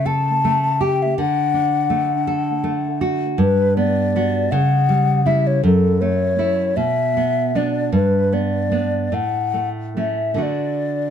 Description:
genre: romantic duo for flute and classical guitar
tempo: 44-55 BPM (dotted quarters)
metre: 6/8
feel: rubato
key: D major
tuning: A4 = 439 Hz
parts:
  - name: mellow hollow concert flute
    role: melody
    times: 0.0-11.1 s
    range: A4 to A5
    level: -20 LUFS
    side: left 4 dB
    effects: plate reverb
  - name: nylon-string guitar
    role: accompaniment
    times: 0.0-11.1 s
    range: F#2 to A4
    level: -19 LUFS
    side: right 2 dB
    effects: none
room: moderate studio reverb, RT60 0.7 s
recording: none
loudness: -16 LUFS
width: side -8 dB against mid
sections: 0.0-11.1 A section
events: none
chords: 0.0 A7/C#; 1.2 D; 3.4 Gmaj7; 4.5 C#dim; 5.6 F#m7; 6.8 Bm; 7.9 G; 9.1 A; 10.4 D

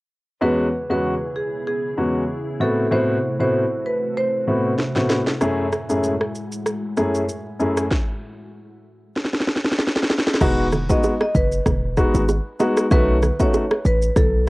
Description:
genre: afrobeats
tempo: 96 BPM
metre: 4/4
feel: swing 55% on 16ths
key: E major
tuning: A4 = 440 Hz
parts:
  - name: marimba with medium hard mallets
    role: melody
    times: 0.4-4.6, 10.9-14.3 s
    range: G#4 to D#5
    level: -24 LUFS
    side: right 1 dB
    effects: none
  - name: warm baby grand piano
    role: accompaniment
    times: 0.4-13.6 s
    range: E2 to G#4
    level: -20 LUFS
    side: left 1 dB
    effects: cassette tape
  - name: glassy FM pad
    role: sustained chords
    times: 0.9-7.9 s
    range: A2 to G#4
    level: -30 LUFS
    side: equal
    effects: ensemble chorus, built-in reverb, cassette tape
  - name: afro-pop drum kit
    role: drums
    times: 4.8-14.3 s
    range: crash cymbal, kick drum, rim click, shaker, snare drum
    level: -21 LUFS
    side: equal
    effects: overdrive, cassette tape
  - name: hard-hitting 808-style bass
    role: bass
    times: 10.4-14.5 s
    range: E1 to B1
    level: -20 LUFS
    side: equal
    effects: none
  - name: congas and bongos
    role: percussion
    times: 10.4-14.3 s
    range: none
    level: -26 LUFS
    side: right 3 dB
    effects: none
room: light reverb, studio ambience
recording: home recording on cassette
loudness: -18 LUFS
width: side -22 dB against mid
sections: 0.4-10.4 A section; 10.4-14.5 B section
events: drum fill 4.8-5.4, 9.2-10.4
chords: 0.4 E6; 2.6 Am6; 5.4 F#m9; 7.9 N.C.; 10.4 Emaj7; 12.9 B9

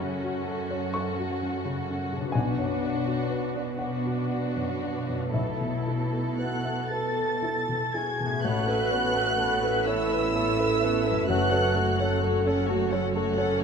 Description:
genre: cinematic, emotional film score for orchestra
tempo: 38-44 BPM (dotted quarters)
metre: 6/8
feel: rubato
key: A major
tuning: A4 = 440 Hz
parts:
  - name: muted studio violin section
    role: melody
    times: 0.0-12.2 s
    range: A4 to A6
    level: -33 LUFS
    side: right 1 dB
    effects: none
  - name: muted studio violin section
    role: second line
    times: 0.0-13.6 s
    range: F#4 to F#5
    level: -35 LUFS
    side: left 2 dB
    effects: none
  - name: muted studio viola section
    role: accompaniment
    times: 0.0-13.6 s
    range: A3 to B4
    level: -33 LUFS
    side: right 2 dB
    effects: none
  - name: warm baby grand piano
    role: accompaniment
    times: 0.0-13.6 s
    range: A1 to C#6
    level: -32 LUFS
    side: left 2 dB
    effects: none
  - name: concert harp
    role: arpeggios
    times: 0.0-13.6 s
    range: F#2 to C#5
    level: -36 LUFS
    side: left 9 dB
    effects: none
  - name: muted studio cello section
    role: bass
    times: 0.0-13.6 s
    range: F#2 to B2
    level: -33 LUFS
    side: right 3 dB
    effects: none
  - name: dark clarinet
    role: second line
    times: 6.4-12.2 s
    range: E4 to A4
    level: -33 LUFS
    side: right 1 dB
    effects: none
  - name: mellow hollow concert flute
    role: second line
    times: 6.4-12.2 s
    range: E5 to A5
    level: -32 LUFS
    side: equal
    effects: none
  - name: dark French horn section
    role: sustained chords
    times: 8.4-13.6 s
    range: F#4 to B4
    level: -30 LUFS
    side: right 2 dB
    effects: none
  - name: muted studio double bass section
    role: bass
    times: 8.4-13.6 s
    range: F#1 to A1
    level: -34 LUFS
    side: right 4 dB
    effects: none
room: moderate scoring stage reverb, RT60 1.8 s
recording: none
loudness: -24 LUFS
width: side -6 dB against mid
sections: 0.0-8.4 A section; 8.4-13.6 A section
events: none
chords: 0.0 F#m; 2.3 Bm; 5.3 Esus4/B; 8.4 Aadd9; 11.3 F#m

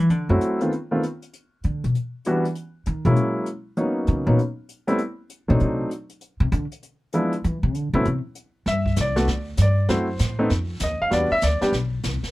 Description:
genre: jazz piano trio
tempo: 196 BPM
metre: 4/4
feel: swing 63% on 8ths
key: unclear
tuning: A4 = 440 Hz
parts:
  - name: upright bass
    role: bass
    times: 0.0-12.3 s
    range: B1 to E3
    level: -21 LUFS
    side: equal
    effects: none
  - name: jazz brush drum kit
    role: drums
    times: 0.1-12.3 s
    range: brushed snare drum, hi-hat, kick drum, snare drum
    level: -33 LUFS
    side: right 1 dB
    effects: none
  - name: warm upright piano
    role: melody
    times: 0.3-11.7 s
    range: Eb3 to F5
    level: -22 LUFS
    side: equal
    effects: none
room: little or no reverb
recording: none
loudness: -21 LUFS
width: side -18 dB against mid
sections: 0.0-8.7 A section; 8.7-12.3 B section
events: upright bass solo 0.0-8.7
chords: 0.1 F#m7b5; 0.7 N.C.; 1.3 E7(no3) (rootless); 2.6 C#7sus2 (rootless); 3.2 F#9; 3.8 Bmaj9; 5.0 Asus2; 5.6 D7b9; 6.2 Csus2; 6.8 E7b9; 7.4 Am (rootless); 8.1 N.C.; 8.7 G5; 9.9 F#m7b5; 10.5 Ebsus2; 11.1 Em7

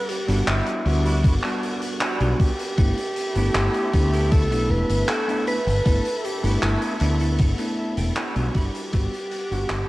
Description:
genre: vaporwave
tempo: 78 BPM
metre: 4/4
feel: straight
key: unclear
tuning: A4 = 437 Hz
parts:
  - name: mellow alto saxophone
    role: melody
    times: 0.0-9.9 s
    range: E4 to B4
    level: -28 LUFS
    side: equal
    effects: tape echo
  - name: lush unison pad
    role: sustained chords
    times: 0.0-9.9 s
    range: G3 to D6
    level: -36 LUFS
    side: equal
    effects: chorus, phaser
  - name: semi-hollow electric guitar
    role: riff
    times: 0.1-9.8 s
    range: G3 to B5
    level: -35 LUFS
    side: right 2 dB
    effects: analog chorus, analog delay
  - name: raw garage drum kit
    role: drums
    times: 0.1-9.9 s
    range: handclaps, hi-hat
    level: -28 LUFS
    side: equal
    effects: gated reverb
  - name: bell-like tine electric piano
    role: accompaniment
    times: 0.3-9.9 s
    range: G3 to F#5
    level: -28 LUFS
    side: equal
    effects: wide subtle chorus
  - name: mellow fretless electric bass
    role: bass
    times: 0.3-9.8 s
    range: E1 to D2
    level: -22 LUFS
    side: equal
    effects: none
  - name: electronic kick drum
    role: drums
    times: 1.2-9.1 s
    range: none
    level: -19 LUFS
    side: equal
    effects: overdrive
room: light reverb, small room ambience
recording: cassette tape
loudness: -20 LUFS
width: side -18 dB against mid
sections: 0.0-9.9 A section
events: clean electric guitar fill 6.6-8.9; fade-out 6.9-9.9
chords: 0.0 Em9/G; 2.8 G69; 8.6 Em9/G

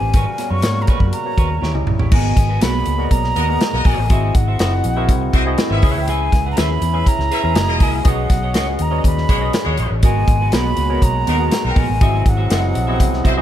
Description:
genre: polished 1980s jazz-funk pop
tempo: 121 BPM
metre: 4/4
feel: straight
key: G# minor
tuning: A4 = 439 Hz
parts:
  - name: breathy mellow jazz flute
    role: melody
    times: 0.0-13.4 s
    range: F#5 to C#6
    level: -23 LUFS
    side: right 1 dB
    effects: none
  - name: tine electric piano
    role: accompaniment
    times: 0.0-13.4 s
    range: A#3 to F#5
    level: -24 LUFS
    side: left 1 dB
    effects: wide subtle chorus
  - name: hand-pumped harmonium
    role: sustained chords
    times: 0.0-2.1, 10.0-13.4 s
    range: B2 to A#4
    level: -30 LUFS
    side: equal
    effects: none
  - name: clean electric guitar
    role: riff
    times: 0.0-13.4 s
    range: B3 to F#5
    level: -27 LUFS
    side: right 3 dB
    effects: wide subtle chorus
  - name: vintage muted fingered electric bass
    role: bass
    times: 0.0-13.4 s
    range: E1 to G#2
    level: -19 LUFS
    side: equal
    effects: none
  - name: modern studio drum kit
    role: drums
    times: 0.1-13.4 s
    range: crash cymbal, hi-hat, kick drum, snare drum, toms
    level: -17 LUFS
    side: equal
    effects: none
  - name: warm horn section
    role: second line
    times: 3.4-13.3 s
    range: F#3 to E5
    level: -27 LUFS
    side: left 2 dB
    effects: none
room: little or no reverb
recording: dark, warm production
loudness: -14 LUFS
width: side -11 dB against mid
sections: 0.0-2.1 A section; 2.1-13.4 B section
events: drum fill 1.6-2.1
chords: 0.1 G#m11; 1.6 D#7b9; 2.1 G#m9; 4.1 G#7b13; 5.8 C#m7; 7.6 F#13; 8.1 B69; 10.0 G#m9; 12.0 G#7b13

